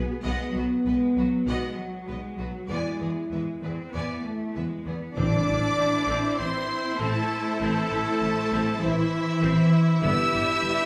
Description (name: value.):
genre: cinematic.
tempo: 98 BPM.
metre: 4/4.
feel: straight.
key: A minor from 5.2 s.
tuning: A4 = 439 Hz.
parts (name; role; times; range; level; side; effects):
rich symphonic violin section; melody; 0.0-10.9 s; B4 to E6; -37 LUFS; equal; none.
clear symphonic violin section; second line; 0.0-10.9 s; E4 to E5; -38 LUFS; equal; none.
bright symphonic viola section; accompaniment; 0.0-10.9 s; B3 to B4; -37 LUFS; equal; none.
dark French horn section; sustained chords; 0.0-10.9 s; E3 to G#4; -33 LUFS; equal; none.
rich symphonic cello section; bass; 0.0-10.9 s; E3 to E4; -31 LUFS; equal; none.
rich symphonic double bass section; bass; 0.0-10.7 s; G1 to E2; -35 LUFS; equal; none.
dark trombone section; sustained chords; 5.2-10.2 s; D3 to C4; -38 LUFS; equal; none.
rich symphonic string section; sustained chords; 5.2-10.9 s; C4 to E5; -38 LUFS; equal; none.
clear trumpet; stabs; 5.2-10.9 s; E4 to E5; -32 LUFS; equal; none.
timpani; percussion; 5.2-6.0 s; A2; -32 LUFS; equal; none.
impact; sound effects; 5.2-7.6 s; none; -43 LUFS; equal; none.
room: wet recital hall reverb, RT60 1.5 s.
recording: studio reverb.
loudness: -26 LUFS.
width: mono.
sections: 0.0-5.2 A section; 5.2-10.9 B section.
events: impact 5.2-7.6.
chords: 0.0 G#m/B; 2.7 E7; 5.2 Am; 10.0 G.